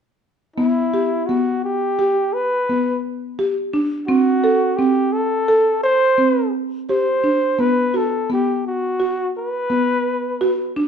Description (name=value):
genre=contemporary instrumental, contemporary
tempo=171 BPM (eighths)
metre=5/8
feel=straight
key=E minor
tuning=A4 = 440 Hz
part: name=breathy flugelhorn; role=melody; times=0.6-10.7 s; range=E4 to C5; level=-19 LUFS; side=equal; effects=none
part: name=buzzing marimba with medium mallets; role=arpeggios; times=0.6-10.9 s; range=B3 to A4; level=-19 LUFS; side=equal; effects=none
room=moderate recital hall reverb, RT60 1.3 s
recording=minimal, uncompressed stereo recording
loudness=-16 LUFS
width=side -7 dB against mid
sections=0.6-10.9 A section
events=none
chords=0.6 Em (rootless); 4.1 Am; 7.6 B5